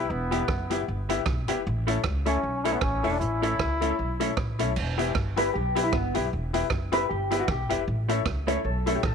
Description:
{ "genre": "ska", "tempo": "154 BPM", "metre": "4/4", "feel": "swing 57% on 8ths", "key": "E dorian", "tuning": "A4 = 441 Hz", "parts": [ { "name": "clear trombone", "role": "melody", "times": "0.0-4.3 s", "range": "B3 to E4", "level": "-30 LUFS", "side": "left 1 dB", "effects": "tape echo" }, { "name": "vintage hollow-body jazz guitar", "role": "accompaniment", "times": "0.0-9.0 s", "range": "G3 to A4", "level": "-33 LUFS", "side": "right 12 dB", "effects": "none" }, { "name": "warm upright piano", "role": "stabs", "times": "0.0-9.0 s", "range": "E4 to E5", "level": "-30 LUFS", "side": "left 12 dB", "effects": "none" }, { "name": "upright bass", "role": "bass", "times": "0.0-9.1 s", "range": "E1 to C#2", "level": "-30 LUFS", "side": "equal", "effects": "none" }, { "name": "vintage drum kit", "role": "drums", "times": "0.3-9.1 s", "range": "crash cymbal, hi-hat, kick drum, rim click", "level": "-31 LUFS", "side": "right 3 dB", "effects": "none" }, { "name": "mellow electric guitar", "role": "melody", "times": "5.4-9.1 s", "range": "B3 to C#5", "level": "-28 LUFS", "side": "equal", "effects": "wide subtle chorus" } ], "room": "light reverb, small room ambience", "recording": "1960s-style stereo with parts hard left and right", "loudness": "-24 LUFS", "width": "side -6 dB against mid", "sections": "0.0-4.8 A section; 4.8-9.1 B section", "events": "clean electric guitar solo 4.8-9.1", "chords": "0.0 Em; 1.6 A; 4.8 Em; 7.9 A" }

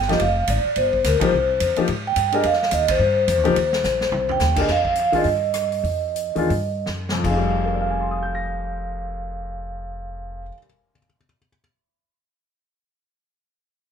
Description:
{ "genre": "modal jazz", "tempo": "150-214 BPM", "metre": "4/4", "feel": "swing 60% on 8ths", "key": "F dorian", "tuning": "A4 = 439 Hz", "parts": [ { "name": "vibraphone with soft mallets", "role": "melody", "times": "0.0-10.5 s", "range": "Bb4 to G5", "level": "-21 LUFS", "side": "right 1 dB", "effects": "none" }, { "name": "upright bass", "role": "bass", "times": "0.0-10.5 s", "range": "F1 to Ab2", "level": "-26 LUFS", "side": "left 1 dB", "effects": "none" }, { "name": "swinging big-band drum kit", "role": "drums", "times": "0.0-7.4 s", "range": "crash cymbal, hi-hat, kick drum, ride cymbal, rim click, snare drum, toms", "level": "-28 LUFS", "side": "right 1 dB", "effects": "none" }, { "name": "warm baby grand piano", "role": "accompaniment", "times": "0.1-11.6 s", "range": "F2 to Bb6", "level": "-24 LUFS", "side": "left 5 dB", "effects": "none" } ], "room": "light reverb", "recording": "minimal, uncompressed stereo recording", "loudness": "-18 LUFS", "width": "side -7 dB against mid", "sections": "0.0-4.7 A section; 4.7-7.2 B section; 7.2-10.4 C section", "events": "band accent 1.2, 2.9; drum fill 3.8-4.4, 6.9-7.2; slowing down 4.7-7.2", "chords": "0.0 Fm9; 2.4 Cm7; 4.7 F7sus2; 7.2 Fm9" }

